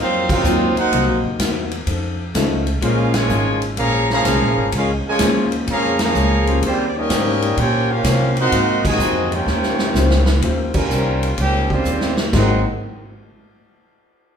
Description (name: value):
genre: jazz, big band swing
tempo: 126 BPM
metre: 4/4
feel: swing 68% on 8ths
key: Ab major from 10.4 s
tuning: A4 = 439 Hz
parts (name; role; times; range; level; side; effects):
- clear trumpet section; melody; 0.0-12.6 s; G3 to C6; -21 LUFS; equal; none
- clear trombone section; second line; 0.0-12.6 s; Ab2 to G4; -22 LUFS; right 2 dB; none
- picked steel-string acoustic guitar; accompaniment; 0.0-12.6 s; Ab2 to C5; -26 LUFS; left 3 dB; none
- warm baby grand piano; accompaniment; 0.0-12.6 s; Gb3 to F5; -25 LUFS; left 4 dB; none
- upright bass; bass; 0.0-12.6 s; Gb1 to C3; -21 LUFS; equal; none
- swinging big-band drum kit; drums; 0.3-12.5 s; crash cymbal, hi-hat, kick drum, ride cymbal, snare drum; -23 LUFS; equal; none
room: wet large studio reverb, RT60 1.1 s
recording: band playing live in one room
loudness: -15 LUFS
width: side -7 dB against mid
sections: 0.0-10.4 A section; 10.4-12.3 B section; 12.3-14.2 C section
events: band accent 0.2, 3.1, 5.9, 8.8, 10.7; drum fill 9.5-10.4, 11.9-12.3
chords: 0.0 Ab13; 0.9 Cm7b5; 1.9 F7alt; 2.8 Bbm7; 6.6 Eb13; 8.5 Ab13; 9.5 Eb13; 12.3 Ab9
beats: 0.45 | 0.92 1.40 1.87 2.35 | 2.82 3.30 3.77 4.25 | 4.73 5.20 5.68 6.15 | 6.63 7.10 7.58 8.05 | 8.53 9.01 9.48 9.96 | 10.43 10.91 11.38 11.86 | 12.34